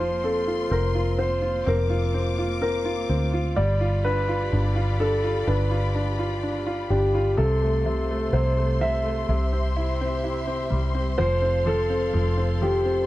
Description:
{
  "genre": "pop",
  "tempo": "63 BPM",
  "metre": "4/4",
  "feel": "straight",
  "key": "F major",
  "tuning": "A4 = 439 Hz",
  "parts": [
    { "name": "dark concert grand piano", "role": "melody", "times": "0.0-13.1 s", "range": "G4 to E5", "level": "-26 LUFS", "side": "equal", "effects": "slapback echo" },
    { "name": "bright upright piano", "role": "accompaniment", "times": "0.0-13.1 s", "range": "C3 to F4", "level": "-28 LUFS", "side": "equal", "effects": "none" },
    { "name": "warm symphonic string section", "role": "sustained chords", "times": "0.0-13.1 s", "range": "Bb3 to D6", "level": "-33 LUFS", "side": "left 2 dB", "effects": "none" },
    { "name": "vintage muted fingered electric bass", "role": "bass", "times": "0.0-13.1 s", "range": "F1 to D2", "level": "-25 LUFS", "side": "equal", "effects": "none" }
  ],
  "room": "small room ambience",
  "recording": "dry, close 1970s-style studio recording",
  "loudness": "-21 LUFS",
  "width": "side -16 dB against mid",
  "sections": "0.0-13.1 A section",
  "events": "none",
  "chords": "0.0 Bbsus2/F; 3.6 G7; 7.4 F/C; 9.3 C; 11.2 F"
}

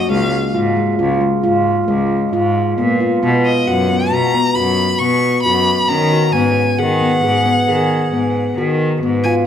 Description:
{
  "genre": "contemporary instrumental, chamber music in an uneven meter",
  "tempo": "134 BPM",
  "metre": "7/4",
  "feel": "straight",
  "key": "unclear",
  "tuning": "A4 = 438 Hz",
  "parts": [
    { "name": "rich violin", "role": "melody", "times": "0.0-9.3 s", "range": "Eb5 to Db6", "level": "-18 LUFS", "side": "left 1 dB", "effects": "none" },
    { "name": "handpan", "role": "arpeggios", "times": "0.0-9.4 s", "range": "Ab3 to Ab4", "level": "-16 LUFS", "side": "left 1 dB", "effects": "none" },
    { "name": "rich cello", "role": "bass", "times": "0.0-9.4 s", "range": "Db2 to Eb3", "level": "-19 LUFS", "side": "equal", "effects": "none" }
  ],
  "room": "light reverb",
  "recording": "minimal, uncompressed stereo recording",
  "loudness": "-13 LUFS",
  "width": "side -9 dB against mid",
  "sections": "0.0-9.5 A section",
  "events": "none",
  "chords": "0.1 Db; 3.2 Cb; 6.3 Abm7"
}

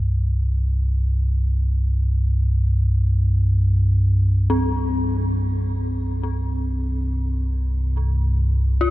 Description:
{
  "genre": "dark ambient drone",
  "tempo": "free time",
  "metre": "none",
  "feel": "none",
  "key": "unclear",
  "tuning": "A4 = 437 Hz",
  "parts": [
    { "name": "deep rumbling drone", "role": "drone", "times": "0.0-8.9 s", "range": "C2 to G2", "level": "-19 LUFS", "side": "equal", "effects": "built-in reverb, wide subtle chorus" },
    { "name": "dark detuned synth bell", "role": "arpeggios", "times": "4.5-8.9 s", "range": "C4 to F4", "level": "-26 LUFS", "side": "left 2 dB", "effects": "chorus, ping-pong delay, shimmer reverb" }
  ],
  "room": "wet cathedral reverb, RT60 7.7 s",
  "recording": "dark, warm production",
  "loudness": "-18 LUFS",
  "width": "side -16 dB against mid",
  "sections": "0.0-8.9 A section",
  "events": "filter sweep on synth drone 0.0-8.9",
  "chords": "0.0 C5"
}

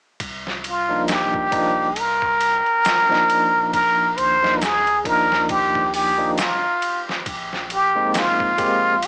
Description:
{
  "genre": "trip hop",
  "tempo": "68 BPM",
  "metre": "4/4",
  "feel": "swing 58% on 16ths",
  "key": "C minor",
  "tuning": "A4 = 440 Hz",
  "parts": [
    { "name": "warm sub bass", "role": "bass", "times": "0.2-9.1 s", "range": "Bb1 to Eb2", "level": "-41 LUFS", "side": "equal", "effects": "none" },
    { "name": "trip hop sampler-style drum kit", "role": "drums", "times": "0.2-9.1 s", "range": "hi-hat, kick drum, ride cymbal, snare drum", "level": "-26 LUFS", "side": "equal", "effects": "studio reverb" },
    { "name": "trumpet with plunger mute", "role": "melody", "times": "0.7-9.1 s", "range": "F4 to C5", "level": "-17 LUFS", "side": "equal", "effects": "vintage 12-bit sampler grit, cassette tape, tape echo" },
    { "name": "bell-like tine electric piano", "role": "accompaniment", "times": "0.9-8.9 s", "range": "F3 to G4", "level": "-26 LUFS", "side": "equal", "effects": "tremolo, vintage 12-bit sampler grit, cassette tape" },
    { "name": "tube shaker", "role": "percussion", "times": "1.1-8.4 s", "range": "none", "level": "-37 LUFS", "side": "right 1 dB", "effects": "none" }
  ],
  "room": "moderate booth ambience, RT60 0.2 s",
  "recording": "home recording on cassette, small speaker sound",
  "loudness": "-16 LUFS",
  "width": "side -39 dB against mid",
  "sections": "0.2-9.1 A section",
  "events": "none",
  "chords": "0.2 Cm11; 7.3 Bb9sus4"
}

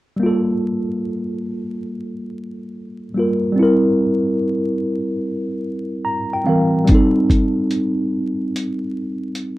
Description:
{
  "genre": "lo-fi hip hop",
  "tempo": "72 BPM",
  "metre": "4/4",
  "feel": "swing 63% on 16ths",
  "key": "G minor",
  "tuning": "A4 = 440 Hz",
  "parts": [
    { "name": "mellow tine electric piano", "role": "accompaniment", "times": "0.2-9.6 s", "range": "E3 to Bb5", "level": "-18 LUFS", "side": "equal", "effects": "medium stereo tremolo, low-pass filter" },
    { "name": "lo-fi sampler-style drum kit", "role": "drums", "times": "6.9-9.6 s", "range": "hi-hat, kick drum", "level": "-16 LUFS", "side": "equal", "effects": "none" }
  ],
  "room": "wet studio ambience, RT60 0.5 s",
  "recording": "rough home demo mix, vinyl crackle",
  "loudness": "-17 LUFS",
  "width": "side -17 dB against mid",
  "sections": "0.2-9.6 A section",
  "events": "tine electric piano fill 5.6-6.9",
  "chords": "0.2 Gm9; 3.6 C7; 6.9 Am7b5"
}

